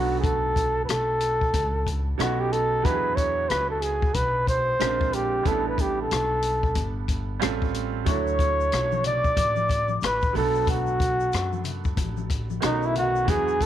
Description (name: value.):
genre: hip hop, jazz-hop.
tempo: 92 BPM.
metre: 4/4.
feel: swing 62% on 16ths.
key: B minor.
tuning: A4 = 441 Hz.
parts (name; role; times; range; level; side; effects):
breathy flugelhorn; melody; 0.0-13.7 s; D#4 to D5; -24 LUFS; equal; none.
bright upright piano; accompaniment; 0.0-13.7 s; B2 to A#4; -31 LUFS; right 15 dB; none.
upright bass; bass; 0.0-13.7 s; G1 to F#2; -29 LUFS; equal; none.
open jazz drum kit; drums; 0.2-13.7 s; hi-hat, kick drum, rim click; -28 LUFS; left 2 dB; none.
vibraphone with soft mallets; second line; 8.1-13.7 s; D#5 to D6; -32 LUFS; left 10 dB; none.
tube shaker and congas; percussion; 8.1-13.7 s; none; -37 LUFS; left 10 dB; none.
room: light reverb, studio ambience.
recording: 1960s-style stereo with parts hard left and right.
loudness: -22 LUFS.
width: side -11 dB against mid.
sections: 0.0-13.7 A section.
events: none.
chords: 0.0 Bm7; 2.2 B9; 2.8 E9; 4.8 A#9; 5.5 A9sus4; 7.4 A7alt; 8.1 Dmaj9; 10.3 Bm7; 12.6 B9.